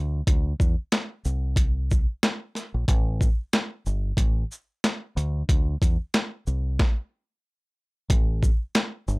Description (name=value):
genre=hip hop, boom-bap hip-hop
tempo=92 BPM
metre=4/4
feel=swing 57% on 16ths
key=unclear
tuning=A4 = 440 Hz
part: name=deep dub fingered electric bass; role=bass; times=0.0-9.2 s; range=G1 to E2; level=-26 LUFS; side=equal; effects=tube saturation
part: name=boom bap sampler-style drum kit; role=drums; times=0.3-9.2 s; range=hi-hat, kick drum, shaker, snare drum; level=-22 LUFS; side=equal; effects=overdrive
room=little or no reverb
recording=dry, gritty hardware recording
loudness=-22 LUFS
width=side -27 dB against mid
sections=0.0-8.1 A section; 8.1-9.2 B section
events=stop 6.8-8.1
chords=none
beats=| 0.27 0.92 1.58 2.23 | 2.88 3.53 4.18 4.84 | 5.49 6.14 6.79 7.45 | 8.10 8.75